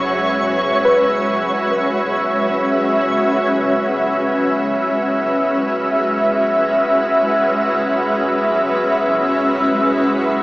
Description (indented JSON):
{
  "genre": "ambient",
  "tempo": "free time",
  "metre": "none",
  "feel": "none",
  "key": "unclear",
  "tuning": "A4 = 440 Hz",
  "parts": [
    { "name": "granular cloud pad", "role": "sustained chords", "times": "0.0-10.4 s", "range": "G#3 to E5", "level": "-15 LUFS", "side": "equal", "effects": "built-in reverb, shimmer reverb" },
    { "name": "deep rumbling drone", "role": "bass", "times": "0.0-10.4 s", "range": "B1", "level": "-42 LUFS", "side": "equal", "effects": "none" },
    { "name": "twinkling granular texture", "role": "texture", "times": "0.0-3.3 s", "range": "C#5 to C#6", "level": "-22 LUFS", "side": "equal", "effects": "built-in reverb, shimmer reverb" },
    { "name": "soft round pluck", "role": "arpeggios", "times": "0.8-2.7 s", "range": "B4", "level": "-20 LUFS", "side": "equal", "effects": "chorus, diffuse ambient delay, shimmer reverb" }
  ],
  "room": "wet lush hall reverb, RT60 2.7 s",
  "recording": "small speaker sound",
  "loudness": "-14 LUFS",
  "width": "side -21 dB against mid",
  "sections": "0.0-3.3 A section; 3.3-10.4 B section",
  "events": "none",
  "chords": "0.0 C#m/B"
}